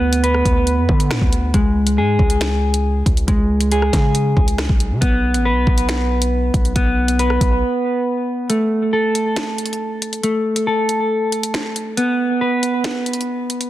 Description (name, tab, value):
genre	hip hop, drill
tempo	138 BPM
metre	4/4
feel	half-time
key	unclear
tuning	A4 = 439 Hz
part	mellow electric guitar	arpeggios	0.0-13.7 s	G#3 to B4	-18 LUFS	equal	lush chorus, digital delay
part	hard-hitting 808-style bass	bass	0.0-7.6 s	A1 to D3	-19 LUFS	equal	none
part	drill drum kit	drums	0.1-13.7 s	finger snaps, hi-hat, kick drum, rim click, snare drum	-19 LUFS	equal	soft clipping on snare
room	light reverb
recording	dense, heavily limited modern master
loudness	-15 LUFS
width	side -14 dB against mid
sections	0.0-8.5 A section; 8.5-13.7 B section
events	break 7.6-8.5, 8.5-13.7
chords	0.0 D5; 1.5 C#5; 5.0 N.C.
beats	0.24 0.67 1.10 | 1.54 1.98 2.41 2.84 | 3.28 3.71 4.15 4.58 | 5.02 5.45 5.89 6.32 | 6.76 7.19 7.63 8.06 | 8.50 8.93 9.37 9.80 | 10.24 10.67 11.11 11.54 | 11.97 12.41 12.84 13.28